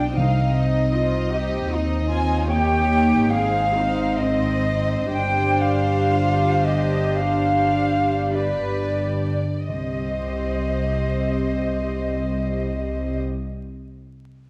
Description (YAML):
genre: classical, slow romantic movement for symphony orchestra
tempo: 42-80 BPM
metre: 4/4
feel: rubato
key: C minor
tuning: A4 = 441 Hz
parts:
  - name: clear studio violin section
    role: melody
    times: 0.0-13.2 s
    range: B4 to Eb5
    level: -38 LUFS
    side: equal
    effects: none
  - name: silver concert flute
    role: second line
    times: 0.0-13.2 s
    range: D5 to Ab5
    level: -27 LUFS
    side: equal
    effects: none
  - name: warm chamber violin section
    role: second line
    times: 0.0-13.2 s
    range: D5 to Ab5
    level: -34 LUFS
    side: equal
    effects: none
  - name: dark studio viola section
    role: accompaniment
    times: 0.0-13.2 s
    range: Bb3 to G4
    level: -28 LUFS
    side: equal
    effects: none
  - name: dark studio double bass section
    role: bass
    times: 0.0-13.2 s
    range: G1 to Eb2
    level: -27 LUFS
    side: equal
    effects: none
  - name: rich symphonic cello section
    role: bass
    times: 0.0-13.2 s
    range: C2 to B4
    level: -32 LUFS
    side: equal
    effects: none
  - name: timpani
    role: percussion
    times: 0.2-1.3, 9.7-13.2 s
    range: C3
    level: -27 LUFS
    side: equal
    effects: none
room: wet scoring stage reverb, RT60 1.7 s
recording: vinyl crackle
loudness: -22 LUFS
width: mono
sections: 0.0-9.7 A section; 9.7-14.5 B section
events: slowing down 0.2-9.7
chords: 0.2 Cm; 1.7 Eb7; 3.3 Ab; 5.1 G7sus4; 7.2 G7; 9.7 Cm